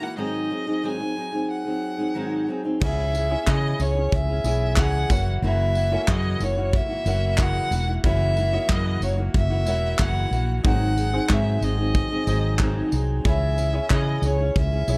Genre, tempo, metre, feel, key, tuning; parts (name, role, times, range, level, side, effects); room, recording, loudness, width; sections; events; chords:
acoustic pop; 92 BPM; 4/4; straight; F# mixolydian; A4 = 441 Hz
clear violin; melody; 0.0-15.0 s; C#5 to G#5; -30 LUFS; equal
fingerpicked steel-string acoustic guitar; accompaniment; 0.0-15.0 s; F#2 to G#4; -30 LUFS; equal
clear upright piano; accompaniment; 2.8-15.0 s; B#3 to G#5; -39 LUFS; equal
woody fretless electric bass; bass; 2.8-15.0 s; E1 to C#3; -26 LUFS; equal
modern studio drum kit; drums; 2.8-15.0 s; crash cymbal, handclaps, kick drum, tambourine; -27 LUFS; equal
light reverb; dark, warm production; -23 LUFS; mono
0.0-2.8 A section; 2.8-15.0 B section
0.2 G#7; 2.8 C#m; 5.1 F#7; 10.6 G#7; 13.3 C#m